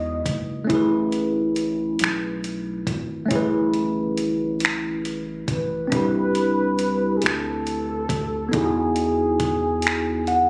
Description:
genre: slow six-eight R&B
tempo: 46 BPM (dotted quarters)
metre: 6/8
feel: straight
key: unclear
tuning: A4 = 437 Hz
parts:
  - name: breathy flugelhorn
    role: melody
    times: 0.0-0.4, 5.5-10.5 s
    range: G#4 to D#5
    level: -28 LUFS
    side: equal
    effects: tape echo
  - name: tine electric piano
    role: accompaniment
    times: 0.0-10.5 s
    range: G#3 to F#5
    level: -25 LUFS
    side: equal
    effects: phaser
  - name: rubbery square bass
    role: bass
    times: 0.0-10.5 s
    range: F#1 to E2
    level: -32 LUFS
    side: equal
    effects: none
  - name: dusty soul sampler-style drum kit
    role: drums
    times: 0.3-10.5 s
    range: finger snaps, hi-hat, kick drum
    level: -28 LUFS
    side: equal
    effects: none
room: light reverb, digital ambience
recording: recorded on a phone in the room, studio reverb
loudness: -23 LUFS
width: mono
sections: 0.0-10.5 A section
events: tine electric piano fill 9.8-10.5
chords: 0.0 Emaj9; 0.7 Amaj9; 5.9 Cmaj9; 8.5 Emaj9

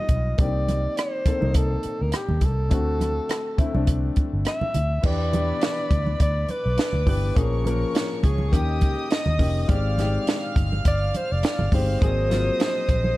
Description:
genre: lush 1970s-style soul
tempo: 103 BPM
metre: 4/4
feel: swing 54% on 16ths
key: unclear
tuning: A4 = 440 Hz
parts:
  - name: warm alto saxophone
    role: melody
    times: 0.0-13.2 s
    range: G4 to E5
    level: -28 LUFS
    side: equal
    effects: tape echo
  - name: warm baby grand piano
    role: accompaniment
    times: 0.0-13.2 s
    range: D3 to Bb4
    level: -30 LUFS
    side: left 3 dB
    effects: none
  - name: vintage muted fingered electric bass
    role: bass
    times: 0.1-13.1 s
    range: F1 to E2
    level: -24 LUFS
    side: equal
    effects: none
  - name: compact cocktail drum kit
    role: drums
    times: 0.1-13.0 s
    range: crash cymbal, hi-hat, kick drum, rim click, snare drum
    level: -23 LUFS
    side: equal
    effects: none
  - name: congas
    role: percussion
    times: 0.1-13.2 s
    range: none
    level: -32 LUFS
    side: right 2 dB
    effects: none
  - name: warm studio violin section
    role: second line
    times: 5.0-13.2 s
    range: B4 to F6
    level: -35 LUFS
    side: right 1 dB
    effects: none
room: small room ambience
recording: dark, warm production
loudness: -20 LUFS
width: side -17 dB against mid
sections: 0.0-5.0 A section; 5.0-13.2 B section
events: none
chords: 0.4 Cm7; 2.7 D7; 5.0 Em7; 7.4 Bbm7; 8.5 Eb7; 9.7 Abmaj7; 12.0 Ab9

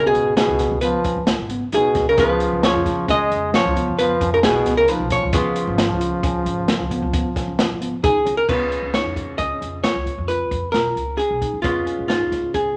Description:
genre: progressive instrumental, band music in an uneven meter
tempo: 133 BPM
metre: 7/4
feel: straight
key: Db mixolydian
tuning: A4 = 440 Hz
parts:
  - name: archtop guitar, miked and amplified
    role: melody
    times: 0.0-12.8 s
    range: F4 to Eb5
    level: -22 LUFS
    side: equal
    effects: none
  - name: brilliant trombone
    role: second line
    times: 0.0-8.0 s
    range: Cb3 to Ab3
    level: -26 LUFS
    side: equal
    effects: none
  - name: archtop guitar, miked and amplified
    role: accompaniment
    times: 0.0-12.8 s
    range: Db3 to F4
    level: -32 LUFS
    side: equal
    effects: none
  - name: tine electric piano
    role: arpeggios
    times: 0.0-12.7 s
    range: Cb4 to Ab4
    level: -32 LUFS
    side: equal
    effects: none
  - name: upright bass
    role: bass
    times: 0.0-12.7 s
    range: Ab1 to F2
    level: -31 LUFS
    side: equal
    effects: none
  - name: open jazz drum kit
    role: drums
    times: 0.1-12.6 s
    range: crash cymbal, hi-hat, kick drum, snare drum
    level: -26 LUFS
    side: equal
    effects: none
room: moderate large studio reverb, RT60 1.3 s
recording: none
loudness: -20 LUFS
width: mono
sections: 0.0-8.5 A section; 8.5-12.8 B section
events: none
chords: 0.0 Db7

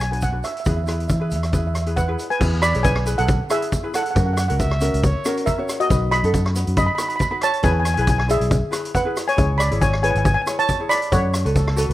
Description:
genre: calypso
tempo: 138 BPM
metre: 4/4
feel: swing 54% on 16ths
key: unclear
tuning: A4 = 440 Hz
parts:
  - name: steel pan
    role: melody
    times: 0.0-11.5 s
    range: F#4 to B5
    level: -22 LUFS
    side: right 1 dB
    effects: none
  - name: fingered electric bass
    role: bass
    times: 0.0-11.9 s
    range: G#1 to E3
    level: -21 LUFS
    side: equal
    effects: none
  - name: street-band drum kit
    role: drums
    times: 0.0-11.9 s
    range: crash cymbal, hi-hat, kick drum, rim click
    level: -23 LUFS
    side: equal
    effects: none
  - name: tube shaker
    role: percussion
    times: 0.0-11.9 s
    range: none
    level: -37 LUFS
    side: right 3 dB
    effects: none
  - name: ukulele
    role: accompaniment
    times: 0.1-11.9 s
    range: C#4 to D5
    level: -28 LUFS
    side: left 1 dB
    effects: none
  - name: breathy trumpet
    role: second line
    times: 4.6-5.4, 11.6-11.9 s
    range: A4 to E5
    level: -30 LUFS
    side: right 2 dB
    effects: none
room: small room ambience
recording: rough home demo mix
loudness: -17 LUFS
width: side -15 dB against mid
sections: 0.0-2.4 A section; 2.4-11.9 B section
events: none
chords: 0.0 Bm; 0.7 E; 4.2 F#7; 5.9 B; 7.6 E; 9.4 C#m; 11.1 F#m

